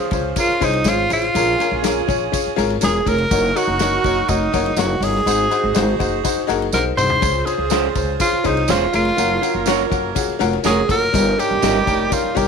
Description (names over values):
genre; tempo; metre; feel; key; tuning
uptempo 1960s-style soul; 123 BPM; 4/4; straight; Db major; A4 = 441 Hz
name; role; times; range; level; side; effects
breathy tenor saxophone; melody; 0.0-12.5 s; Eb4 to C5; -19 LUFS; right 1 dB; slapback echo
vibraphone with medium hard mallets; second line; 0.0-12.5 s; Eb4 to C5; -29 LUFS; right 16 dB; none
warm saxophone section; second line; 0.0-12.5 s; F3 to C5; -27 LUFS; right 16 dB; none
bright upright piano; accompaniment; 0.0-12.5 s; G2 to Db5; -22 LUFS; left 13 dB; none
upright bass; bass; 0.0-12.5 s; Fb1 to Db2; -23 LUFS; right 2 dB; none
natural country drum kit; drums; 0.1-12.5 s; hi-hat, kick drum, ride cymbal, snare drum, toms; -26 LUFS; left 4 dB; none
tambourine; percussion; 0.1-12.5 s; none; -30 LUFS; right 17 dB; none
electric guitar through a small old amp; stabs; 7.7-11.8 s; Ab3 to Eb5; -22 LUFS; right 16 dB; none
room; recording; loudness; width
studio ambience; 1960s-style stereo with parts hard left and right; -15 LUFS; side -6 dB against mid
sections
0.0-12.5 A section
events
drum fill 6.7-7.2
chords
0.0 Dbmaj7; 1.3 Bbm7; 3.3 Gb6; 5.3 Ab7; 7.2 Dbmaj7; 9.2 Gbmaj7; 11.1 Eb7